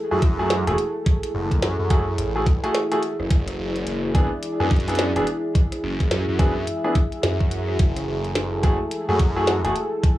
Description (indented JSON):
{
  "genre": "glitch hop",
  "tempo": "107 BPM",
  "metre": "4/4",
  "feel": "swing 61% on 16ths",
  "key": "F# minor",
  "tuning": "A4 = 440 Hz",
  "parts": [
    { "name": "dark analog pad", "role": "sustained chords", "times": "0.0-10.2 s", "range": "E4 to E5", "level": "-27 LUFS", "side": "equal", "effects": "chorus, sidechain pumping" },
    { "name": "warm grand piano", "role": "stabs", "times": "0.1-9.7 s", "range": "A3 to G#4", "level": "-25 LUFS", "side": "equal", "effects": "sidechain pumping, tape echo" },
    { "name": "phased detuned saw bass", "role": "bass", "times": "0.1-9.7 s", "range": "E1 to F#2", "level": "-25 LUFS", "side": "equal", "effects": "phaser" },
    { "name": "electronic kick drum", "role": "drums", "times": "0.2-10.2 s", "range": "none", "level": "-19 LUFS", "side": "equal", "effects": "overdrive" },
    { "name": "glitchy drum kit", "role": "drums", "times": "0.2-10.2 s", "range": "hi-hat, rim click, snare drum", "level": "-27 LUFS", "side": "equal", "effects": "overdrive" }
  ],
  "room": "little or no reverb",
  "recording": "dry, gritty hardware recording, small room ambience",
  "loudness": "-19 LUFS",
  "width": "side -15 dB against mid",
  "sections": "0.0-10.2 A section",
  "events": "none",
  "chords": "0.0 F#m9; 3.3 E7; 7.8 F#m9",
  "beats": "0.50 | 1.06 1.62 2.19 2.75 | 3.31 3.87 4.43 4.99 | 5.55 6.11 6.67 7.23 | 7.79 8.35 8.91 9.48 | 10.04"
}